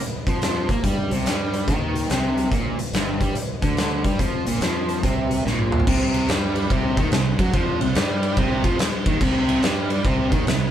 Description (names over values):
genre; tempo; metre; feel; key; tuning
blues rock power trio and southern rock; 143 BPM; 4/4; swing 65% on 8ths; unclear; A4 = 440 Hz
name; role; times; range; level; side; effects
distorted electric guitar; riff; 0.0-10.7 s; G2 to Bb3; -23 LUFS; right 1 dB; distortion
growling fingered electric bass; bass; 0.0-10.7 s; G1 to Bb2; -27 LUFS; equal; overdrive
oversized low-tuned drum kit; drums; 0.3-10.6 s; crash cymbal, hi-hat, kick drum, ride cymbal, snare drum, toms; -22 LUFS; equal; none
room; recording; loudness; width
moderate small room reverb, RT60 0.5 s; band playing live in one room; -19 LUFS; side -10 dB against mid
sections
0.0-5.9 A section; 5.9-10.7 B section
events
drum fill 5.5-5.9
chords
0.0 C5; 2.5 Bb5; 5.9 C5